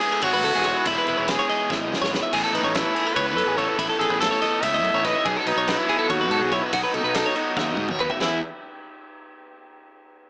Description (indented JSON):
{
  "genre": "math rock and midwest emo",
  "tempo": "286 BPM (eighths)",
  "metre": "7/8",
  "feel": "straight",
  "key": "E major",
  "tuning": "A4 = 441 Hz",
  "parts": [
    { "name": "bright trumpet", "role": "melody", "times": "0.0-8.4 s", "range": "D#4 to E5", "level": "-27 LUFS", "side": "equal", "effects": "slapback echo" },
    { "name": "twelve-string electric guitar", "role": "arpeggios", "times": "0.0-8.4 s", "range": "E4 to E5", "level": "-27 LUFS", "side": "equal", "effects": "spring reverb" },
    { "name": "overdriven electric guitar", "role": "riff", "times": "0.0-8.4 s", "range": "B2 to A4", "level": "-31 LUFS", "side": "equal", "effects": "none" },
    { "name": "loose indie drum kit", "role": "drums", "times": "0.0-8.3 s", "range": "crash cymbal, kick drum, ride cymbal, snare drum, splash cymbal, toms", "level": "-31 LUFS", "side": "equal", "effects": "none" },
    { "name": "fuzz fingered electric bass", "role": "bass", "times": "0.2-8.4 s", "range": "E1 to G#2", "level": "-34 LUFS", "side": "equal", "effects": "overdrive" }
  ],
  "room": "light reverb",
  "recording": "small speaker sound",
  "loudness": "-22 LUFS",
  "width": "mono",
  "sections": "0.0-8.2 A section; 8.2-9.7 B section",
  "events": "drum fill 1.7-2.3, 7.6-8.2",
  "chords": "0.0 E; 2.3 Asus2; 5.3 Badd9; 8.2 E"
}